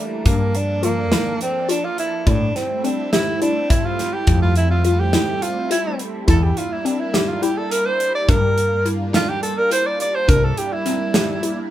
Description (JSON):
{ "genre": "progressive instrumental, band music in an uneven meter", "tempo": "209 BPM (eighths)", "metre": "7/8", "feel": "straight", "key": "C mixolydian", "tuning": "A4 = 440 Hz", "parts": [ { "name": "breathy tenor saxophone", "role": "melody", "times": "0.0-11.6 s", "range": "A3 to D5", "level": "-21 LUFS", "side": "right 2 dB", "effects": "none" }, { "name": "analog string pad", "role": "accompaniment", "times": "0.0-11.7 s", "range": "E3 to A4", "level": "-28 LUFS", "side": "equal", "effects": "ensemble chorus, phaser" }, { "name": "hollow square pluck", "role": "arpeggios", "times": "0.3-11.7 s", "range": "C4 to G4", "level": "-24 LUFS", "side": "left 4 dB", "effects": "chorus" }, { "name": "woody fretless electric bass", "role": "bass", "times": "0.3-10.5 s", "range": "C2 to A2", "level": "-18 LUFS", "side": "equal", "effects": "none" }, { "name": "modern studio drum kit", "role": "drums", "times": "0.3-11.6 s", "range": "hi-hat, kick drum, snare drum", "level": "-20 LUFS", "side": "equal", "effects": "none" } ], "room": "moderate studio reverb, RT60 0.5 s", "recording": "band playing live in one room", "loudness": "-17 LUFS", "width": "side -12 dB against mid", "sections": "0.0-11.7 A section", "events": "tenor saxophone solo 0.0-11.7", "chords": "0.3 Gm7; 2.3 Am7; 4.3 Fmaj7; 6.3 C7/E; 8.3 Gm7; 10.3 C9" }